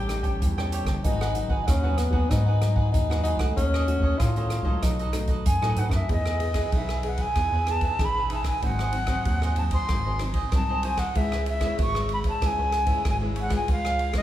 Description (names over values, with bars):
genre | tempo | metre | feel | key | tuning
samba and choro | 95 BPM | 4/4 | straight | E major from 6.1 s | A4 = 441 Hz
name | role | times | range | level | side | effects
breathy tenor saxophone | second line | 0.0-5.5 s | B3 to G4 | -30 LUFS | left 3 dB | none
cavaquinho | accompaniment | 0.0-14.2 s | D#4 to G5 | -34 LUFS | right 4 dB | none
nylon-string guitar | accompaniment | 0.0-14.2 s | F#2 to G#4 | -31 LUFS | left 2 dB | none
rubbery square bass | bass | 0.0-14.2 s | G1 to A2 | -27 LUFS | equal | none
open jazz drum kit | drums | 0.1-14.2 s | hi-hat, kick drum, ride cymbal, rim click | -28 LUFS | equal | none
silver concert flute | melody | 5.5-14.2 s | D#5 to C#6 | -28 LUFS | equal | none
room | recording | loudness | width
wet recital hall reverb, RT60 1.8 s | recorded in a church or concert hall | -22 LUFS | side -13 dB against mid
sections
0.0-6.1 A section; 6.1-14.2 B section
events
tenor saxophone solo 0.0-6.1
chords
0.0 A7#11; 1.0 G#m7; 3.6 D#m7b5; 4.8 B7; 6.1 Emaj7; 8.6 G#7; 11.2 C#m7; 13.7 C#7